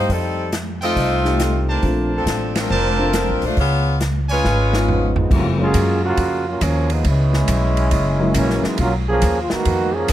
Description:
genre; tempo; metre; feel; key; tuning
jazz, big band swing; 138 BPM; 4/4; swing 66% on 8ths; F# major from 5.3 s; A4 = 441 Hz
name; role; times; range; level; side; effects
warm saxophone section; melody; 0.0-5.1 s; F3 to Db5; -21 LUFS; left 2 dB; none
upright bass; bass; 0.0-10.1 s; F1 to F#2; -20 LUFS; equal; none
swinging big-band drum kit; drums; 0.1-10.1 s; crash cymbal, hi-hat, kick drum, ride cymbal, snare drum, toms; -24 LUFS; equal; none
bright trumpet section; stabs; 0.8-4.8 s; D4 to A5; -25 LUFS; right 3 dB; none
warm grand piano; accompaniment; 1.2-8.8 s; E#3 to G4; -23 LUFS; left 2 dB; none
clear trombone section; second line; 4.9-10.1 s; C#3 to G#4; -20 LUFS; right 2 dB; none
room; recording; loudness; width
light reverb; close, detailed microphones; -16 LUFS; side -12 dB against mid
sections
0.0-5.3 A section; 5.3-10.1 B section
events
band accent 2.5; drum fill 4.4-5.3; trombone section solo 5.3-10.1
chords
0.1 F9; 1.8 Bbmaj9; 3.6 Db7; 5.3 F#maj7; 7.1 C#m7; 7.9 F#7; 8.8 Bmaj7

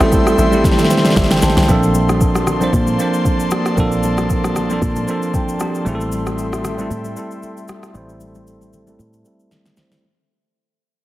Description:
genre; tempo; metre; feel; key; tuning
amapiano; 115 BPM; 4/4; swing 55% on 16ths; A phrygian; A4 = 441 Hz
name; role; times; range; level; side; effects
bell-like tine electric piano; accompaniment; 0.0-10.1 s; F3 to A5; -18 LUFS; right 2 dB; low-pass filter
airy breathy pad; sustained chords; 0.0-10.0 s; Bb3 to C6; -24 LUFS; left 2 dB; chorus, sidechain pumping, low-pass filter
tight log drum bass; bass; 0.0-1.7 s; G1 to C2; -18 LUFS; equal; none
smooth R&B drum kit; drums; 0.0-10.0 s; kick drum, rim click, shaker, snare drum; -18 LUFS; equal; none
congas; percussion; 0.0-9.9 s; none; -29 LUFS; left 5 dB; none
fingered electric bass; bass; 1.7-9.2 s; A1 to Bb2; -22 LUFS; equal; none
room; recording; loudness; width
light reverb, digital ambience; heavily compressed radio sound; -14 LUFS; side -15 dB against mid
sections
0.0-1.7 A section; 1.7-10.0 B section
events
drum fill 0.6-1.7, 9.5-10.0; fade-out 1.7-10.0; filter sweep 1.7-10.0; tine electric piano fill 5.1-5.9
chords
0.0 Am7; 1.7 Bbmaj9; 5.9 Am7

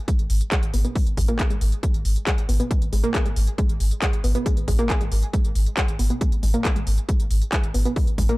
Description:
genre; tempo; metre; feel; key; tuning
driving peak-time techno; 137 BPM; 4/4; straight; G# minor; A4 = 441 Hz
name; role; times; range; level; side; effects
analog pluck; riff; 0.1-8.3 s; G#3 to G#4; -28 LUFS; equal; chorus, overdrive, sidechain pumping, dub echo
electronic kick drum; drums; 0.1-8.3 s; none; -22 LUFS; equal; overdrive
techno drum kit; drums; 0.1-8.4 s; handclaps, hi-hat; -30 LUFS; equal; overdrive
warm sub bass; bass; 0.2-8.3 s; G#1; -23 LUFS; equal; tube saturation, sidechain pumping, low-pass filter
room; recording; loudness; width
digital ambience; dark, warm production; -19 LUFS; side -20 dB against mid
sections
0.0-8.4 A section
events
none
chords
0.0 G#m

